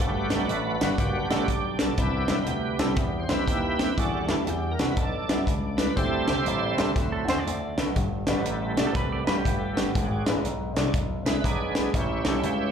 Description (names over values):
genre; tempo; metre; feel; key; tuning
uptempo gospel; 121 BPM; 4/4; swing 64% on 8ths; G major; A4 = 441 Hz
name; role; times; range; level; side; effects
warm baby grand piano; accompaniment; 0.0-12.7 s; G2 to D5; -32 LUFS; left 5 dB; slapback echo
bright tonewheel organ; sustained chords; 0.0-12.7 s; F#3 to C5; -29 LUFS; right 4 dB; slow rotary speaker, overdrive, chorus vibrato
slap bass with an envelope filter; bass; 0.0-12.7 s; F#1 to F#2; -29 LUFS; equal; none
tight funk drum kit; drums; 0.0-12.6 s; hi-hat, kick drum, snare drum; -28 LUFS; equal; none
clean electric guitar; second line; 7.1-9.9 s; G4 to D5; -34 LUFS; right 5 dB; slapback echo
room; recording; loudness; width
light reverb, studio ambience; live gig heard through the venue's PA, club reverb; -23 LUFS; side -7 dB against mid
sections
0.0-12.7 A section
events
tonewheel organ solo 0.0-12.7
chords
0.0 Gmaj7; 2.0 Cmaj7; 4.0 Em7; 6.0 D7sus4; 7.0 D7; 8.0 Gmaj7; 9.9 E7/G#; 11.9 A7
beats
0.49 0.99 1.49 | 1.99 2.48 2.98 3.48 | 3.98 4.47 4.97 5.47 | 5.97 6.47 6.96 7.46 | 7.96 8.46 8.95 9.45 | 9.95 10.45 10.94 11.44 | 11.94 12.44